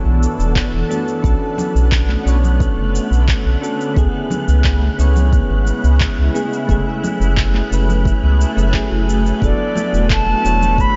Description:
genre	sunset chillout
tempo	88 BPM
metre	4/4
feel	straight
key	F# minor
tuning	A4 = 436 Hz
part	soft electric-piano-like synth keys	accompaniment	0.0-11.0 s	A3 to C#5	-25 LUFS	equal	chorus, tremolo, tape echo
part	shimmering ambient pad	sustained chords	0.0-11.0 s	C#3 to A4	-26 LUFS	equal	chorus, built-in reverb, phaser
part	round analog bass	bass	0.0-10.9 s	E1 to C#2	-17 LUFS	equal	none
part	wind-like tuned noise texture	texture	0.0-11.0 s	F#6	-34 LUFS	equal	built-in reverb
part	electronic shaker and handclaps	drums	0.2-10.9 s	none	-28 LUFS	equal	studio reverb
part	electronic kick drum	drums	0.6-10.9 s	none	-22 LUFS	equal	overdrive, studio reverb
part	congas	percussion	0.9-10.7 s	none	-30 LUFS	equal	none
part	silver concert flute	melody	9.4-11.0 s	D5 to B5	-20 LUFS	equal	none
room	light reverb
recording	nothing above 7.6 kHz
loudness	-16 LUFS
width	mono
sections	0.0-11.0 A section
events	none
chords	0.0 E7sus4; 1.2 Bm7; 4.0 C#m7; 6.7 F#m9; 9.4 E7sus4

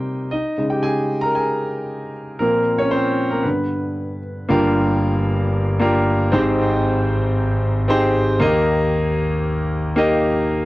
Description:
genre	pop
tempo	115 BPM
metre	4/4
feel	straight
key	unclear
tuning	A4 = 438 Hz
part	warm concert grand piano	solo	0.0-10.7 s	G1 to Bb5	-17 LUFS	equal	cassette tape
room	moderate studio reverb, RT60 0.5 s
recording	home recording on cassette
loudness	-17 LUFS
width	side -18 dB against mid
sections	0.0-4.5 A section; 4.5-10.7 B section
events	grand piano solo 0.0-4.5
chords	0.3 Dbsus2; 2.4 Bbsus2; 3.5 G; 4.5 Gm7; 6.3 Abmaj7; 8.4 Eb

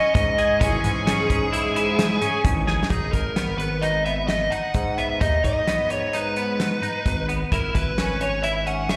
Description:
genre	progressive instrumental, band music in an uneven meter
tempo	130 BPM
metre	5/4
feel	straight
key	G# minor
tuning	A4 = 440 Hz
part	fuzz lead guitar	melody	0.0-9.0 s	G#4 to F#5	-27 LUFS	equal	distortion, plate reverb, slapback echo, delay
part	clear concert grand piano	accompaniment	0.0-2.9 s	E3 to E4	-35 LUFS	equal	plate reverb, slapback echo
part	clean electric guitar	arpeggios	0.0-9.0 s	B3 to G#4	-30 LUFS	equal	ensemble chorus, plate reverb, slapback echo, delay
part	loose indie drum kit	drums	0.1-9.0 s	hi-hat, kick drum, snare drum	-27 LUFS	equal	none
part	fat analog bass	bass	0.2-9.0 s	G#1 to G#2	-28 LUFS	equal	none
room	light reverb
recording	live gig heard through the venue's PA, recital hall reverb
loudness	-22 LUFS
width	mono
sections	0.0-2.9 A section; 2.9-9.0 B section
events	drum fill 2.7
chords	0.0 C#madd9/G#; 2.9 G#m; 7.5 C#m/G#

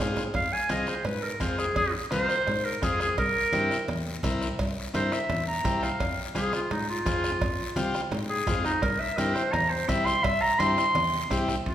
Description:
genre	latin, cumbia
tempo	170 BPM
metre	4/4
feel	straight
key	F harmonic minor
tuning	A4 = 440 Hz
part	overdriven combo organ	accompaniment	0.0-11.6 s	C4 to Bb4	-32 LUFS	left 2 dB	none
part	fingered electric bass	bass	0.0-11.7 s	C2 to Ab2	-33 LUFS	equal	none
part	bombo	percussion	0.2-11.7 s	none	-35 LUFS	right 1 dB	none
part	congas	percussion	0.2-11.7 s	none	-37 LUFS	right 2 dB	none
part	guiro	percussion	0.2-11.7 s	none	-40 LUFS	left 4 dB	none
part	timbales and cowbell	percussion	0.2-11.7 s	none	-40 LUFS	right 3 dB	none
part	warm clarinet	melody	0.3-11.7 s	Eb4 to C6	-26 LUFS	equal	none
room	wet recital hall reverb, RT60 1.5 s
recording	recorded in a church or concert hall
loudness	-24 LUFS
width	side -11 dB against mid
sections	0.3-11.7 A section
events	drum fill 0.0-0.3, 11.0-11.7; clarinet solo 0.3-11.7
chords	0.3 Fm; 3.2 C7; 6.0 Fm; 8.8 C

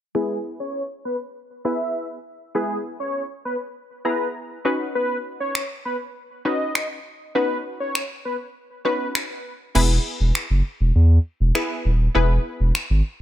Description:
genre	dance-pop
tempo	100 BPM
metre	4/4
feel	straight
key	unclear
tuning	A4 = 440 Hz
part	punchy chord stab	accompaniment	0.1-12.9 s	B3 to A#5	-26 LUFS	left 1 dB	chorus, low-pass filter
part	wide unison lead	melody	0.2-9.1 s	G#4 to E5	-27 LUFS	left 1 dB	low-pass filter
part	smooth R&B drum kit	drums	5.6-12.9 s	crash cymbal, finger snaps	-26 LUFS	left 1 dB	none
part	saturated sub bass	bass	9.8-13.0 s	D#1 to E2	-16 LUFS	equal	none
room	little or no reverb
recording	none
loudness	-21 LUFS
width	side -13 dB against mid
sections	0.2-9.8 A section; 9.8-13.2 B section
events	filter sweep 0.2-9.8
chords	0.2 E; 4.7 Badd9; 9.8 E

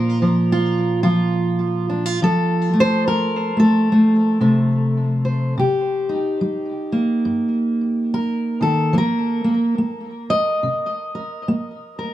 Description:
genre	folk, solo fingerstyle acoustic guitar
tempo	72 BPM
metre	4/4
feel	swing 60% on 8ths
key	unclear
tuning	A4 = 438 Hz
part	fingerpicked steel-string acoustic guitar	solo	0.0-12.1 s	G2 to Eb5	-17 LUFS	equal	tape echo
room	moderate studio reverb, RT60 0.7 s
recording	none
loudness	-17 LUFS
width	side -13 dB against mid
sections	0.0-5.6 A section; 5.6-12.1 B section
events	none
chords	0.0 Bb5; 2.2 F; 5.6 Cm7; 8.9 Fsus4

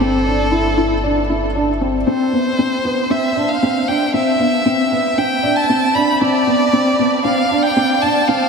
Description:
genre	piano and strings electronica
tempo	116 BPM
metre	4/4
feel	straight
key	A minor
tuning	A4 = 439 Hz
part	rich violin	melody	0.0-8.5 s	A4 to B5	-18 LUFS	right 1 dB	ping-pong delay
part	felt-muted upright piano	riff	0.0-8.4 s	B3 to E4	-16 LUFS	equal	analog chorus, ping-pong delay
part	round analog bass	bass	0.0-2.0 s	G1	-23 LUFS	right 1 dB	tube saturation
room	wet huge ambient reverb, RT60 8.1 s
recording	dreamy mix soaked in reverb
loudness	-14 LUFS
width	side -5 dB against mid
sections	0.0-2.1 A section; 2.1-8.5 B section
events	build-up 2.1-8.5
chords	0.0 Gsus2; 2.1 Amadd9/B (rootless)

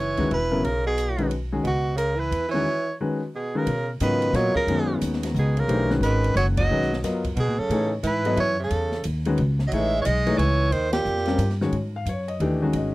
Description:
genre	modal jazz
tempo	178 BPM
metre	3/4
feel	swing 63% on 8ths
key	unclear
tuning	A4 = 440 Hz
part	breathy soprano saxophone	melody	0.0-11.6 s	Gb4 to E5	-26 LUFS	right 1 dB	none
part	bright tenor saxophone	second line	0.0-11.6 s	A#2 to G#3	-30 LUFS	right 4 dB	none
part	upright bass	bass	0.0-12.9 s	Fb1 to B2	-25 LUFS	equal	none
part	clear grand piano	accompaniment	0.2-12.9 s	Db3 to F5	-26 LUFS	left 2 dB	none
part	open jazz drum kit	drums	0.2-12.8 s	hi-hat, kick drum, ride cymbal, snare drum	-36 LUFS	equal	none
room	light reverb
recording	dry, close 1970s-style studio recording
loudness	-21 LUFS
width	side -18 dB against mid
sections	0.0-3.7 A section; 3.7-11.7 B section; 11.7-12.9 C section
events	break 2.7-3.7; band accent 6.5, 10.9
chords	0.0 Gb9sus4; 3.7 Bmaj9; 7.7 Amaj9; 10.7 D#9; 11.7 Ab7sus4

